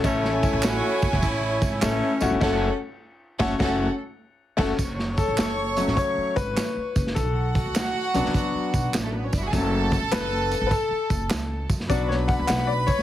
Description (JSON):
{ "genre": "uptempo 1960s-style soul", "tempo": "101 BPM", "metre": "4/4", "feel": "swing 66% on 8ths", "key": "F# minor", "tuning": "A4 = 441 Hz", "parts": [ { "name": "bright saxophone section", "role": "second line", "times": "0.0-2.3, 11.9-12.2 s", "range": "E3 to F#4", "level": "-30 LUFS", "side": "right 2 dB", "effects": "none" }, { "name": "rich studio violin section", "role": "second line", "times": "0.0-13.0 s", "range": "A3 to C#6", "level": "-29 LUFS", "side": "right 2 dB", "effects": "none" }, { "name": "bright grand piano", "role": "accompaniment", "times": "0.0-13.0 s", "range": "F#3 to F#5", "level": "-26 LUFS", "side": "left 4 dB", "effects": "none" }, { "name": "upright bass", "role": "bass", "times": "0.0-13.0 s", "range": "E1 to F#2", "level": "-28 LUFS", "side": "right 1 dB", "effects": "none" }, { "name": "crunchy breakbeat drum kit", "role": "drums", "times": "0.0-13.0 s", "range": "crash cymbal, hi-hat, kick drum, ride cymbal, snare drum", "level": "-27 LUFS", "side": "right 1 dB", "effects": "none" }, { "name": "tambourine and handclaps", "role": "percussion", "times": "0.0-13.0 s", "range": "none", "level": "-35 LUFS", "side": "right 5 dB", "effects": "none" } ], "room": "light reverb", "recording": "heavily compressed radio sound", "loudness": "-21 LUFS", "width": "side -12 dB against mid", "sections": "0.0-4.8 A section; 4.8-13.0 B section", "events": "band accent 2.4-4.8, 11.9-13.0; grand piano solo 4.8-13.0", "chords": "0.0 A; 2.4 F#m; 7.2 Bm; 9.5 F#m; 11.9 Bm", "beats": "| 0.04 0.64 1.23 1.82 | 2.42 3.01 3.60 4.19 | 4.79 5.38 5.97 6.57 | 7.16 7.75 8.35 8.94 | 9.53 10.12 10.72 11.31 | 11.90 12.49" }